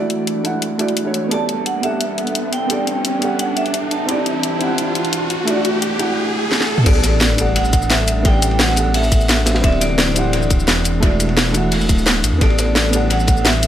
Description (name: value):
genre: liquid drum and bass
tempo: 173 BPM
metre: 4/4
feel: straight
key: A dorian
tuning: A4 = 439 Hz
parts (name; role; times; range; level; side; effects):
- felt-muted upright piano; accompaniment; 0.0-13.7 s; A3 to F#5; -22 LUFS; right 2 dB; low-pass filter, dub echo
- airy breathy pad; sustained chords; 0.0-13.7 s; E3 to A4; -26 LUFS; left 1 dB; chorus, sidechain pumping
- dark detuned saw bass; bass; 0.0-13.7 s; D1 to E2; -21 LUFS; equal; high-pass filter
- riser and sub drop; sound effects; 0.1-8.3 s; none; -23 LUFS; equal; none
- garage drum kit; drums; 0.1-13.7 s; crash cymbal, hi-hat, shaker, snare drum, toms; -19 LUFS; left 1 dB; studio reverb, dub echo
- vibraphone with medium hard mallets; melody; 1.3-13.7 s; D5 to A5; -24 LUFS; right 2 dB; analog delay
- crunchy breakbeat drum kit; drums; 6.9-13.7 s; hi-hat, ride cymbal, snare drum; -24 LUFS; equal; high-pass filter on cymbals, studio reverb, high-pass filter on hats, high-pass filter on snare, high-pass filter on room
- electronic kick drum; drums; 6.9-13.4 s; none; -16 LUFS; equal; studio reverb
room: moderate spring reverb, RT60 1.7 s, small room ambience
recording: echo-heavy mix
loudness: -14 LUFS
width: side -11 dB against mid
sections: 0.0-6.9 A section; 6.9-13.7 B section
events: build-up 0.0-6.9; filter sweep on analog synth pad 0.0-6.9; riser 0.1-6.9; drum fill 6.5-6.9; drop 6.9-13.7; impact 6.9-8.3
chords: 0.0 E9sus4; 1.3 A9sus4; 4.1 D9sus4; 5.3 E9sus4; 6.9 A9sus4; 9.6 D9sus4; 10.9 E9sus4; 12.4 A9sus4